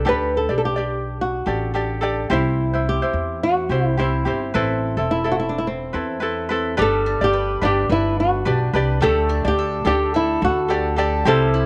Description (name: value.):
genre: pop.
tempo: 107 BPM.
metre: 4/4.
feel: swing 55% on 16ths.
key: G major.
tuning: A4 = 441 Hz.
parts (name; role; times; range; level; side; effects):
nylon-string guitar; melody; 0.0-11.7 s; C4 to B4; -24 LUFS; equal; none.
ukulele; accompaniment; 0.0-11.7 s; C4 to D5; -25 LUFS; equal; none.
upright bass; bass; 0.0-11.7 s; E1 to E2; -26 LUFS; equal; none.
mandolin; arpeggios; 6.8-11.7 s; G3 to B4; -30 LUFS; equal; none.
room: light reverb, studio reverb.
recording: none.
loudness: -20 LUFS.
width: mono.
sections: 0.0-6.8 A section; 6.8-11.7 B section.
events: none.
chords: 0.1 Dsus4; 2.3 C; 4.5 Amadd9; 6.8 G; 9.0 Dsus4.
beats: | 0.06 0.62 1.18 1.74 | 2.30 2.86 3.42 3.98 | 4.54 5.10 5.66 6.22 | 6.78 7.34 7.90 8.46 | 9.02 9.58 10.14 10.70 | 11.26.